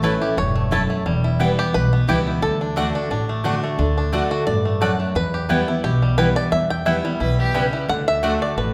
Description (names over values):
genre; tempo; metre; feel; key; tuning
bluegrass; 176 BPM; 4/4; swing 54% on 8ths; E dorian; A4 = 440 Hz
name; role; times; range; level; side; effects
bluegrass banjo; melody; 0.0-8.7 s; G3 to G5; -26 LUFS; equal; none
picked steel-string acoustic guitar; accompaniment; 0.0-8.7 s; E2 to F#4; -24 LUFS; equal; none
mandolin; stabs; 0.0-8.3 s; A3 to A5; -29 LUFS; equal; none
upright bass; bass; 0.0-8.7 s; E1 to E2; -26 LUFS; equal; none
clear fiddle; second line; 7.2-7.8 s; G4 to B4; -29 LUFS; equal; none
room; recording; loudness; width
wet recital hall reverb, RT60 1.4 s; recorded in a church or concert hall; -20 LUFS; mono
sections
0.0-8.7 A section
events
five-string banjo solo 0.0-8.7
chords
0.0 A; 1.1 Em; 2.4 D; 5.2 Em; 7.9 D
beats
0.03 0.37 0.71 | 1.06 1.40 1.74 2.08 | 2.42 2.77 3.11 3.45 | 3.79 4.13 4.47 4.82 | 5.16 5.50 5.84 6.18 | 6.52 6.87 7.21 7.55 | 7.89 8.23 8.57